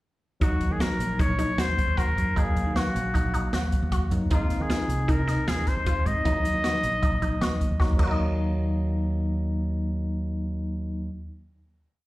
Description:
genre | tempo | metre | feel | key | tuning
progressive instrumental, band music in an uneven meter | 155 BPM | 5/4 | straight | Eb dorian | A4 = 440 Hz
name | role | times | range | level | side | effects
clear trumpet | melody | 0.4-7.8 s | F4 to Eb5 | -29 LUFS | left 1 dB | slapback echo, digital delay
barky tine electric piano | accompaniment | 0.4-11.1 s | Gb3 to F5 | -32 LUFS | equal | medium stereo tremolo
resonant blip pluck | arpeggios | 0.4-11.2 s | Eb4 to Eb5 | -33 LUFS | equal | phaser, slapback echo
picked electric bass | bass | 0.4-11.1 s | Bb1 to Eb3 | -27 LUFS | equal | none
open jazz drum kit | drums | 0.4-8.1 s | crash cymbal, hi-hat, kick drum, snare drum | -27 LUFS | equal | none
room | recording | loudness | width
light reverb | live gig heard through the venue's PA, club reverb | -23 LUFS | side -18 dB against mid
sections
0.4-8.2 A section; 8.2-12.0 final hit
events
drum fill 7.8-8.2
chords
0.4 Ebm; 4.3 Fm7; 6.3 Ebm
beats
| 0.42 0.81 1.20 1.59 1.98 | 2.37 2.76 3.15 3.54 3.92 | 4.31 4.70 5.09 5.48 5.87 | 6.25 6.64 7.03 7.42 7.80 | 8.19 8.57 8.96 9.34 9.73 | 10.12 10.50 10.89

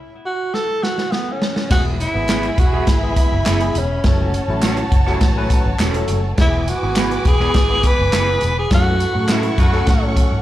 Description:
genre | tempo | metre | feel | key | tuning
uptempo 1960s-style soul | 103 BPM | 4/4 | straight | unclear | A4 = 441 Hz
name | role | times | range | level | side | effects
breathy tenor saxophone | melody | 0.3-10.4 s | B3 to B4 | -21 LUFS | right 1 dB | plate reverb, slapback echo, tape echo
swinging big-band drum kit | drums | 0.5-10.3 s | crash cymbal, hi-hat, kick drum, snare drum | -18 LUFS | equal | none
warm studio violin section | second line | 1.7-10.4 s | F#4 to D6 | -26 LUFS | equal | plate reverb, slapback echo
barky tine electric piano | accompaniment | 1.7-10.3 s | E3 to B4 | -27 LUFS | left 5 dB | overdrive, analog chorus, plate reverb, slapback echo
vintage muted fingered electric bass | bass | 1.7-10.4 s | E1 to A2 | -20 LUFS | equal | none
tambourine and handclaps | percussion | 1.7-10.3 s | none | -31 LUFS | left 1 dB | none
electric guitar through a small old amp | stabs | 2.3-9.9 s | B3 to C#5 | -26 LUFS | right 5 dB | analog chorus, slapback echo
clear horn section | second line | 9.3-10.0 s | C#3 to F#4 | -29 LUFS | left 2 dB | slapback echo
room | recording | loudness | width
light reverb | live gig heard through the venue's PA, club reverb | -15 LUFS | side -14 dB against mid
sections
0.0-1.7 A section; 1.7-10.4 B section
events
tenor saxophone solo 0.0-1.7; stop 0.0-1.7; drum fill 0.5-1.7; band accent 8.7-10.4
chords
0.0 N.C.; 1.7 E; 4.0 F#m; 6.4 E; 8.7 F#m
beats
0.53 1.12 | 1.70 2.29 2.88 3.46 | 4.04 4.63 5.21 5.80 | 6.38 6.97 7.55 8.13 | 8.72 9.30 9.88

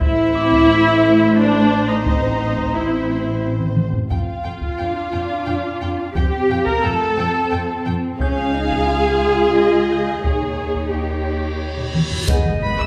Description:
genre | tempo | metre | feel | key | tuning
cinematic, suspense film score | 88 BPM | 3/4 | straight | unclear | A4 = 438 Hz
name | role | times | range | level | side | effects
muted symphonic violin section | melody | 0.0-12.9 s | C5 to E6 | -31 LUFS | equal | none
muted symphonic violin section | second line | 0.0-12.9 s | B4 to Bb5 | -28 LUFS | equal | none
muted symphonic viola section | accompaniment | 0.0-12.9 s | B3 to Bb4 | -22 LUFS | equal | none
muted symphonic cello section | bass | 0.0-12.9 s | G#2 to F4 | -26 LUFS | equal | none
muted symphonic double bass section | bass | 0.0-12.9 s | G#1 to F2 | -27 LUFS | equal | none
taiko ensemble | drums | 0.0-12.9 s | none | -25 LUFS | equal | none
concert harp | texture | 0.0-12.9 s | F5 to A6 | -32 LUFS | equal | none
reverse cymbal and impact | sound effects | 11.2-12.9 s | none | -30 LUFS | equal | none
bright clarinet | second line | 12.3-12.9 s | D#5 | -28 LUFS | equal | none
mellow French horn section | sustained chords | 12.3-12.5 s | B3 to G#4 | -29 LUFS | equal | none
room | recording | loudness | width
wet recital hall reverb, RT60 1.3 s | recorded in a church or concert hall | -18 LUFS | mono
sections
0.0-12.3 A section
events
drum fill 3.6-4.1, 11.8-12.3; reverse cymbal 11.2-12.3; impact 12.3-12.9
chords
0.0 Am; 4.1 Fadd9; 8.2 Db; 10.2 Eb7; 12.3 G#m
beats
| 0.02 0.70 1.38 | 2.06 2.75 3.43 | 4.11 4.79 5.47 | 6.16 6.84 7.52 | 8.20 8.88 9.56 | 10.24 10.93 11.61 | 12.29

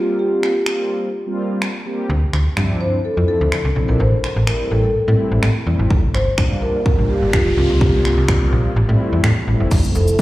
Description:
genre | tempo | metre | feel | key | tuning
dance-pop | 126 BPM | 4/4 | straight | unclear | A4 = 440 Hz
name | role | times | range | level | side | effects
marimba with soft mallets | melody | 0.0-10.2 s | F4 to C5 | -21 LUFS | equal | low-pass filter, tape echo, slapback echo
mellow synth brass | accompaniment | 0.0-10.2 s | F3 to G4 | -24 LUFS | equal | chorus, sidechain pumping, low-pass filter, slapback echo
pop drum kit | drums | 0.4-10.2 s | crash cymbal, finger snaps, kick drum, shaker, snare drum | -19 LUFS | equal | overdrive
slap-like FM bass | bass | 2.1-10.2 s | F1 to A2 | -16 LUFS | equal | sidechain pumping
noise sweep and riser | sound effects | 6.1-10.2 s | none | -32 LUFS | left 1 dB | slapback echo
ethereal airy pad | sustained chords | 9.9-10.2 s | A4 to C6 | -33 LUFS | right 5 dB | none
room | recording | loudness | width
light reverb, digital ambience | live gig heard through the venue's PA, recital hall reverb | -15 LUFS | side -17 dB against mid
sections
0.0-9.7 A section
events
noise sweep 6.1-9.7; kick muted 8.8-9.7; drum fill 9.7-10.2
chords
0.0 C7sus4; 2.1 Dm9; 4.0 Am7; 5.9 Gm7; 7.6 C7sus4; 8.8 Am7; 9.7 Fmaj7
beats
| 0.19 0.67 1.14 1.62 | 2.10 2.57 3.05 3.52 | 4.00 4.48 4.95 5.43 | 5.91 6.38 6.86 7.33 | 7.81 8.29 8.76 9.24 | 9.71 10.19

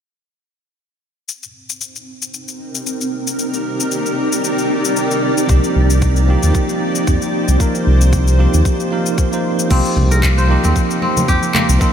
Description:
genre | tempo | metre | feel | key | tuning
organic downtempo | 114 BPM | 4/4 | swing 55% on 16ths | C minor | A4 = 437 Hz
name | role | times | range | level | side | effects
granular cloud pad | sustained chords | 2.6-9.7 s | C4 to D5 | -20 LUFS | equal | built-in reverb, sidechain pumping
deep house drum kit | drums | 1.3-11.9 s | crash cymbal, handclaps, shaker | -24 LUFS | left 4 dB | overdrive
bell-like tine electric piano | accompaniment | 5.5-11.9 s | F3 to C5 | -19 LUFS | right 1 dB | medium stereo tremolo, sidechain pumping, diffuse ambient delay
smooth synth bass | bass | 5.5-11.8 s | C2 to F2 | -13 LUFS | equal | tube saturation, sidechain pumping
electronic kick drum | drums | 5.5-11.9 s | none | -17 LUFS | equal | none
kora | arpeggios | 9.7-11.9 s | Bb3 to C5 | -19 LUFS | left 2 dB | diffuse ambient delay
congas and bongos | percussion | 10.0-11.7 s | none | -24 LUFS | right 2 dB | none
room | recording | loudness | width
moderate huge ambient reverb, RT60 7.5 s | dreamy mix soaked in reverb | -13 LUFS | side -9 dB against mid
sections
1.3-9.7 A section; 9.7-11.9 B section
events
none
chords
1.3 Cm9; 9.7 Cm7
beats
| 1.28 1.81 2.34 2.86 | 3.39 3.92 4.44 4.97 | 5.50 6.02 6.55 7.07 | 7.60 8.13 8.65 9.18 | 9.71 10.23 10.76 11.28 | 11.81

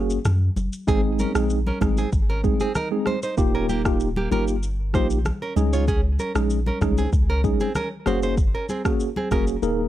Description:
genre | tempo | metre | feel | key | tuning
afrobeats | 96 BPM | 4/4 | straight | Ab major | A4 = 440 Hz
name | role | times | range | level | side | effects
mellow tine electric piano | accompaniment | 0.0-9.9 s | Ab3 to Bb4 | -24 LUFS | equal | medium stereo tremolo
punchy sub bass | bass | 0.0-9.9 s | Eb1 to Gb2 | -24 LUFS | equal | none
afro-pop drum kit | drums | 0.1-9.8 s | kick drum, rim click, shaker | -24 LUFS | equal | vintage 12-bit sampler grit
congas | percussion | 0.3-9.5 s | none | -32 LUFS | left 2 dB | none
nylon-string guitar | riff | 0.9-9.4 s | Bb3 to Db5 | -28 LUFS | right 3 dB | none
room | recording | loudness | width
light reverb | none | -20 LUFS | side -13 dB against mid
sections
0.0-9.9 A section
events
break 0.0-0.9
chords
0.0 Gbadd9; 0.9 Ab; 3.4 Ebadd9; 5.6 Dbsus2; 8.1 Gbadd9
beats
0.25 | 0.88 1.50 2.13 2.75 | 3.38 4.00 4.63 5.25 | 5.88 6.50 7.13 7.75 | 8.38 9.00 9.63

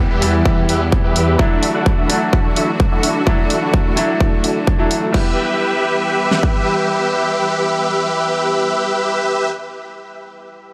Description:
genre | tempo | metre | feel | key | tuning
EDM, festival progressive house | 128 BPM | 4/4 | straight | E minor | A4 = 440 Hz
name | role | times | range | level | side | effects
bright grand piano | accompaniment | 0.0-10.7 s | E3 to G4 | -25 LUFS | equal | sidechain pumping, dub echo
clear symphonic string section | sustained chords | 0.0-9.5 s | E3 to G4 | -27 LUFS | equal | sidechain pumping
dense compressed supersaw | riff | 0.0-9.5 s | D4 to F#5 | -21 LUFS | equal | vintage 12-bit sampler grit, sidechain pumping, low-pass filter, dub echo
detuned saw bass | bass | 0.0-1.4 s | E2 | -20 LUFS | equal | sidechain pumping
downlifter | sound effects | 0.0-1.4 s | none | barely audible | none | none
big-room dance drum kit | drums | 0.2-5.2 s | crash cymbal, hi-hat | -26 LUFS | equal | small room ambience
big-room dance drum kit | drums | 0.5-6.5 s | kick drum, snare drum | -18 LUFS | equal | small room ambience
room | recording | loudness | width
light reverb | none | -16 LUFS | mono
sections
0.0-5.1 A section; 5.1-8.9 B section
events
filter sweep on supersaw synth 0.0-5.1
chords
0.0 Em; 1.4 Dadd9; 5.1 Em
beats
0.46 0.92 | 1.39 1.86 2.33 2.80 | 3.27 3.74 4.21 4.67 | 5.14 5.61 6.08 6.55 | 7.02 7.49 7.96 8.42

